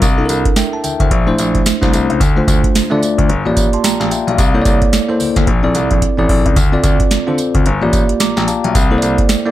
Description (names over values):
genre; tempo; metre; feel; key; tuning
R&B, new jack swing; 110 BPM; 4/4; swing 60% on 16ths; unclear; A4 = 439 Hz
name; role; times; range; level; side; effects
bell-like tine electric piano; accompaniment; 0.0-9.5 s; A3 to D6; -16 LUFS; moving between left 3 dB and right 3 dB; auto-pan
clear concert grand piano; bass; 0.0-9.1 s; G1 to D3; -17 LUFS; left 2 dB; none
booming analog drum machine; drums; 0.0-9.4 s; hi-hat, kick drum, snare drum, tambourine; -15 LUFS; equal; overdrive
room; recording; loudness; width
little or no reverb; none; -11 LUFS; side -14 dB against mid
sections
0.0-9.5 A section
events
drum fill 6.0-6.6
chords
0.0 C13; 1.1 Bbmaj9#11; 2.2 Dm7; 3.3 Gm7; 4.4 C13; 5.5 Bbmaj9#11; 6.6 Dm7; 7.7 Gm7; 8.7 C13